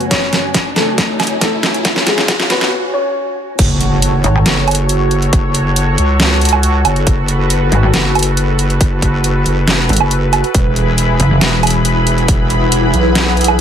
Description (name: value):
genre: heavy wobble dubstep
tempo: 138 BPM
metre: 4/4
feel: half-time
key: F# minor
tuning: A4 = 442 Hz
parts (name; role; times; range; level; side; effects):
- dark baby grand piano; melody; 0.0-3.5 s; G#3 to C#5; -20 LUFS; left 3 dB; ping-pong delay
- lush unison pad; sustained chords; 0.0-13.6 s; F#2 to B5; -18 LUFS; equal; chorus, phaser, sidechain pumping
- dubstep drum kit; drums; 0.0-13.6 s; crash cymbal, hi-hat, snare drum, woodblock; -15 LUFS; right 2 dB; overdrive
- riser and impact; sound effects; 0.0-5.3 s; none; -22 LUFS; equal; none
- granular cloud pad; texture; 0.0-2.7, 11.7-13.6 s; E4 to G#5; -22 LUFS; equal; built-in reverb, sidechain pumping
- electronic kick drum; drums; 0.1-12.4 s; none; -16 LUFS; equal; overdrive
- wobble bass; bass; 3.6-13.6 s; E1 to C#2; -14 LUFS; equal; chorus, overdrive
- pulsing pluck wobble bass; bass; 4.2-4.4, 7.7-11.4 s; F#1 to G#1; -11 LUFS; equal; chorus, overdrive
room: light reverb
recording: high-pass filter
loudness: -11 LUFS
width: side -9 dB against mid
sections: 0.0-3.6 A section; 3.6-13.6 B section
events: build-up 0.0-3.6; drum fill 0.0-2.7; riser 0.0-2.7; filter sweep on analog synth pad 0.0-3.6; filter sweep 0.0-3.6; break 2.7-3.6; drop 3.6-13.6; impact 3.6-5.3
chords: 0.0 F#m; 10.5 E